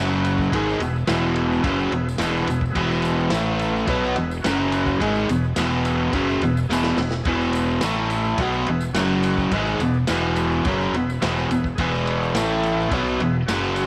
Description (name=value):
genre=garage rock duo or trio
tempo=106 BPM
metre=4/4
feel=straight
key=E major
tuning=A4 = 445 Hz
part: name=overdriven combo organ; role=sustained chords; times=0.0-13.9 s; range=E4 to B5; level=-34 LUFS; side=equal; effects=none
part: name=biting overdriven guitar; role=riff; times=0.0-13.9 s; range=E2 to B3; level=-23 LUFS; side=equal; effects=none
part: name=fuzz fingered electric bass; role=bass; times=0.0-13.9 s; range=E1 to B1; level=-31 LUFS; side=equal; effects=overdrive
part: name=tambourine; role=percussion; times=0.1-13.9 s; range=none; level=-48 LUFS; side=equal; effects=none
part: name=crunchy breakbeat drum kit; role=drums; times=0.2-13.9 s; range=kick drum, ride cymbal, snare drum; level=-32 LUFS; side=equal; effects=none
room=light reverb, studio reverb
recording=none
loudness=-22 LUFS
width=mono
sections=0.0-13.9 A section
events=drum fill 6.7-7.3; transistor combo organ fill 10.7-11.8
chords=0.0 F#5; 0.5 E; 3.3 A5; 3.9 E; 4.4 F#5; 5.0 E; 7.8 A5; 8.4 E; 9.0 F#5; 9.5 E; 12.3 A5; 12.9 E